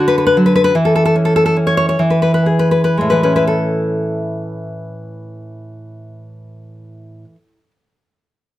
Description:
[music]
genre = romantic piece for solo classical guitar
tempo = 38-53 BPM (dotted quarters)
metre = 6/8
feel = rubato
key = A major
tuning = A4 = 439 Hz
[part]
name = nylon-string guitar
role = solo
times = 0.0-7.7 s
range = A2 to C#5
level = -14 LUFS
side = left 1 dB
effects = none
[sound]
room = light reverb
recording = close, detailed microphones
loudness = -12 LUFS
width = side -14 dB against mid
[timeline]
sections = 0.0-3.5 A section; 3.5-8.6 B section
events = slowing down 0.0-3.5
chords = 0.0 D; 0.7 A/E; 2.0 E; 3.5 A

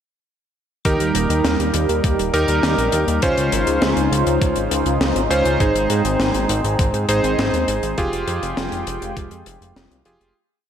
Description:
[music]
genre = synthwave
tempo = 101 BPM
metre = 4/4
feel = straight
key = F minor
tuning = A4 = 440 Hz
[part]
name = deep reggae drum kit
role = drums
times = 0.8-10.3 s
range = hi-hat, snare drum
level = -24 LUFS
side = left 2 dB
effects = studio ambience, gated reverb
[part]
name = phased analog pad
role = sustained chords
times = 0.9-10.3 s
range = Db3 to G5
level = -23 LUFS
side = equal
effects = phaser, chorus, sidechain pumping
[part]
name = clear electric grand piano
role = stabs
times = 0.9-10.3 s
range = Db4 to C5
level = -21 LUFS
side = right 1 dB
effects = digital delay
[part]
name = fat analog bass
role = bass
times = 0.9-10.3 s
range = Eb1 to Ab2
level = -23 LUFS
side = equal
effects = none
[part]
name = electronic kick drum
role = drums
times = 0.9-9.3 s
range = none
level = -22 LUFS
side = equal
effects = studio ambience
[sound]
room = light reverb, small room ambience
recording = none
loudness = -16 LUFS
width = side -9 dB against mid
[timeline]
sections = 0.9-10.4 verse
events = fade-out 7.2-10.4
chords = 0.9 Eb; 3.2 Dbmaj7; 5.6 Ab; 8.0 Fmadd9

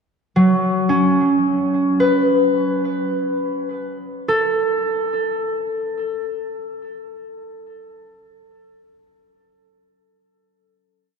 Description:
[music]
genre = ambient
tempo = free time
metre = none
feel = none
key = F# minor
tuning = A4 = 444 Hz
[part]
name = concert harp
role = solo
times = 0.4-7.5 s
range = F#3 to B4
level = -18 LUFS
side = equal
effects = tape echo
[sound]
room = wet cathedral reverb, RT60 5.7 s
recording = in a vast, echoing space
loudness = -17 LUFS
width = side -5 dB against mid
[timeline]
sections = 0.0-4.3 A section; 4.3-7.6 final note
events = none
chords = 0.0 N.C.; 0.9 F#sus4 (rootless); 4.3 N.C.

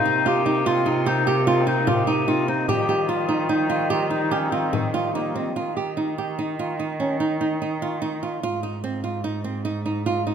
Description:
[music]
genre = contemporary instrumental, chamber music in an uneven meter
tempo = 147 BPM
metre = 7/4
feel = straight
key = Eb major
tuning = A4 = 441 Hz
[part]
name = clear clarinet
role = second line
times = 0.0-5.5 s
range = Bb3 to G4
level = -24 LUFS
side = left 3 dB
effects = none
[part]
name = pedal harmonium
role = sustained chords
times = 0.0-5.5 s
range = C3 to Eb4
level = -29 LUFS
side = left 2 dB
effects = none
[part]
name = muted cello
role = bass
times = 0.0-10.3 s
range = Ab2 to Eb3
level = -28 LUFS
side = right 2 dB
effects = none
[part]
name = flamenco guitar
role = arpeggios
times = 0.1-10.3 s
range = C4 to G4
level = -24 LUFS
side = right 3 dB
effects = none
[part]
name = frame drum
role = percussion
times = 0.1-4.9 s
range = none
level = -31 LUFS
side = left 5 dB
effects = none
[part]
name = crotales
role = texture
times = 2.1-2.9 s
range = Eb7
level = -36 LUFS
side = left 5 dB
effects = none
[sound]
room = moderate concert hall reverb, RT60 2.3 s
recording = none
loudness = -21 LUFS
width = side -8 dB against mid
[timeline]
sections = 0.0-5.6 A section; 5.6-10.3 B section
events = none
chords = 0.0 Cm7; 2.7 Ebadd9; 5.6 Ebsus2; 8.4 Ab

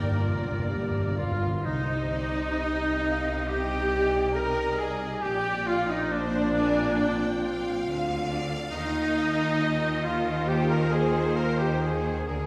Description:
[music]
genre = cinematic, emotional film score for orchestra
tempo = 68 BPM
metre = 4/4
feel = uneven beats, rubato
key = C minor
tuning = A4 = 440 Hz
[part]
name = rich studio violin section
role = melody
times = 0.0-12.5 s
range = Bb4 to G5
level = -43 LUFS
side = equal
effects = none
[part]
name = clear oboe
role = second line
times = 0.0-12.5 s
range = D4 to Bb4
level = -36 LUFS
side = equal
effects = none
[part]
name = flute section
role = second line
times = 0.0-12.5 s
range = D5 to Bb5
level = -37 LUFS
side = equal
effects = none
[part]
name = mellow clarinet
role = second line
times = 0.0-1.6 s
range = Eb4 to Bb4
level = -40 LUFS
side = equal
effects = none
[part]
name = rich studio violin section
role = second line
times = 0.0-12.5 s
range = Bb4 to Ab5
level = -40 LUFS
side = equal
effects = none
[part]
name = rich studio viola section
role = accompaniment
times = 0.0-12.5 s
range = Bb3 to D5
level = -31 LUFS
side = equal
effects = none
[part]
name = dark French horn section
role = sustained chords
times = 0.0-12.5 s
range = G3 to G4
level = -36 LUFS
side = equal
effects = none
[part]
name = clear studio cello section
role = bass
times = 0.0-12.5 s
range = G2 to Eb3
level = -36 LUFS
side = equal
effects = none
[part]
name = clear studio double bass section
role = bass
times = 0.0-12.5 s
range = G1 to Eb2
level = -36 LUFS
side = equal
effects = none
[part]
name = timpani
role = percussion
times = 0.0-3.0 s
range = G2 to C3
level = -32 LUFS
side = equal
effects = none
[sound]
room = wet scoring stage reverb, RT60 1.8 s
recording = heard from further back in the room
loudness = -27 LUFS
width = mono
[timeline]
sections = 0.0-1.6 A section; 1.6-12.5 B section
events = timpani fill 0.0-1.6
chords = 0.0 Gm; 1.6 Cmadd9; 5.2 Bbadd9; 8.7 Ebsus2

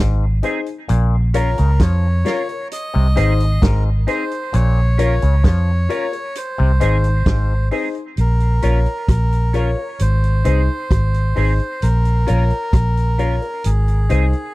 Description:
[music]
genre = roots reggae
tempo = 66 BPM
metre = 4/4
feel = straight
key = Bb minor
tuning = A4 = 440 Hz
[part]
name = auto-wah clav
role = riff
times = 0.0-7.5 s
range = Ab2 to F3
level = -29 LUFS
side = left 8 dB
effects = none
[part]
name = vintage muted fingered electric bass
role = bass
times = 0.0-14.3 s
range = Ab1 to F2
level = -15 LUFS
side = equal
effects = none
[part]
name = clean electric guitar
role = accompaniment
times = 0.4-14.3 s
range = C4 to Bb4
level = -28 LUFS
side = right 3 dB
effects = analog chorus, tape echo
[part]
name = warm upright piano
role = stabs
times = 0.4-14.3 s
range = Eb4 to Db5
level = -23 LUFS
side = left 6 dB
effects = none
[part]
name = vintage drum kit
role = drums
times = 0.4-14.5 s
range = hi-hat, kick drum, rim click, snare drum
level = -17 LUFS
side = equal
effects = none
[part]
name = melodica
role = melody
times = 1.4-14.5 s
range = Ab4 to Eb5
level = -26 LUFS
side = right 1 dB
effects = tape echo
[sound]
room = studio reverb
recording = dry, close 1970s-style studio recording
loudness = -15 LUFS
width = side -19 dB against mid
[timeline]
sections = 0.0-8.2 A section; 8.2-14.5 B section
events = none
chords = 0.0 Ab; 0.9 Bbm; 2.7 Ab; 4.5 Bbm; 6.4 Ab; 8.2 Bbm; 10.0 Ab; 11.8 Bbm; 13.6 Ab

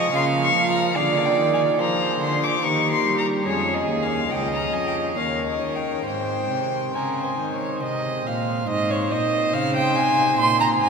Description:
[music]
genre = classical, baroque-style sonata movement with continuo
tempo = 71 BPM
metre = 3/4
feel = rubato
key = Ab major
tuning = A4 = 440 Hz
[part]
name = rich violin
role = melody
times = 0.0-10.9 s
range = C5 to D6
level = -26 LUFS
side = left 5 dB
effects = none
[part]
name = warm violin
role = second line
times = 0.0-10.9 s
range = Ab4 to C6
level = -23 LUFS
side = right 3 dB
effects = none
[part]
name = pipe organ, foundations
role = accompaniment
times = 0.0-10.9 s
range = Db2 to C5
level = -27 LUFS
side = left 1 dB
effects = none
[part]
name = rich cello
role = bass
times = 0.0-10.9 s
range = Db2 to G3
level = -27 LUFS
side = right 1 dB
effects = none
[sound]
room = wet cathedral reverb, RT60 5.3 s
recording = none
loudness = -20 LUFS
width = side -5 dB against mid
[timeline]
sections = 0.0-8.7 A section; 8.7-10.9 B section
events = none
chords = 0.1 Bbm/Db; 1.0 Bb7/D; 2.6 Eb; 3.5 Db; 5.2 Eb5; 6.1 Ab

